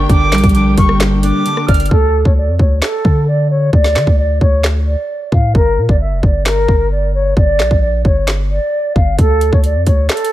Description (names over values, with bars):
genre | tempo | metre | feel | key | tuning
hip hop, trap | 132 BPM | 4/4 | half-time | D harmonic minor | A4 = 440 Hz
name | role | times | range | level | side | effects
mellow concert flute | melody | 0.0-10.3 s | A4 to F6 | -17 LUFS | equal | low-pass filter
mellow electric guitar | accompaniment | 0.0-1.9 s | D3 to D5 | -15 LUFS | equal | low-pass filter
dark studio string section | sustained chords | 0.0-1.9 s | D4 to G5 | -24 LUFS | right 2 dB | none
long sustained 808-style bass | bass | 0.0-10.1 s | F1 to D3 | -15 LUFS | equal | none
trap drum kit | drums | 0.1-10.3 s | handclaps, hi-hat, kick drum, rim click, snare drum | -13 LUFS | equal | none
room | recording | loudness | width
little or no reverb | none | -11 LUFS | side -14 dB against mid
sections
0.0-1.9 A section; 1.9-10.3 B section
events
hi-hats muted 1.9-9.2; filter sweep 1.9-10.3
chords
0.0 Gm; 1.9 D5; 5.5 Gm; 9.2 D5